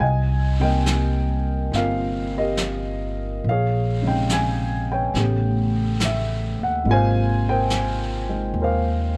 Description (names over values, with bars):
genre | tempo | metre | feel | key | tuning
jazz ballad | 70 BPM | 4/4 | swing 69% on 8ths | unclear | A4 = 440 Hz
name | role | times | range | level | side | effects
dark baby grand piano | accompaniment | 0.0-9.2 s | C3 to Ab5 | -26 LUFS | equal | none
upright bass | bass | 0.0-9.2 s | G1 to Eb2 | -25 LUFS | equal | none
vintage brush drum kit | drums | 0.0-9.2 s | brushed snare drum, hi-hat, snare drum | -33 LUFS | equal | none
room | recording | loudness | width
little or no reverb | dark, warm production | -22 LUFS | mono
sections
0.0-9.2 A section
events
none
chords
0.0 Cm7; 3.4 Bbm11; 5.1 A9; 6.8 Ab69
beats
| 0.01 0.87 1.73 2.58 | 3.44 4.29 5.14 6.00 | 6.85 7.70 8.55